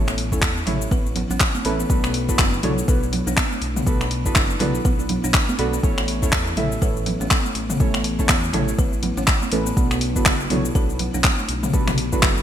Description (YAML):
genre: afro house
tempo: 122 BPM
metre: 4/4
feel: swing 59% on 16ths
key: B minor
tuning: A4 = 440 Hz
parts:
  - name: deep mellow chord stab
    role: stabs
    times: 0.0-12.2 s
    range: A3 to E5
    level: -27 LUFS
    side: right 3 dB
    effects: lush chorus, sidechain pumping, digital delay
  - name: dark detuned saw bass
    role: bass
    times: 0.0-12.4 s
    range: F#1 to E2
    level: -27 LUFS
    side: equal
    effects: sidechain pumping
  - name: buzzing kalimba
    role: arpeggios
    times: 0.1-12.3 s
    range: A3 to B4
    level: -29 LUFS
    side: left 2 dB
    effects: sidechain pumping, digital delay
  - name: deep house drum kit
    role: drums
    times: 0.1-12.4 s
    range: cabasa, finger snaps, handclaps, hi-hat, toms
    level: -23 LUFS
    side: left 1 dB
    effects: overdrive, gated reverb
  - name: electronic kick drum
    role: drums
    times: 0.3-12.3 s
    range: none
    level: -20 LUFS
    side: equal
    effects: overdrive
  - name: congas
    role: percussion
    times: 0.4-12.3 s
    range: none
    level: -30 LUFS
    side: right 4 dB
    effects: none
room: light reverb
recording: bright 1980s-style digital production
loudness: -18 LUFS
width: side -10 dB against mid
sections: 0.0-12.4 A section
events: none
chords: 0.0 A; 1.9 Bm7; 5.8 A; 9.8 Bm7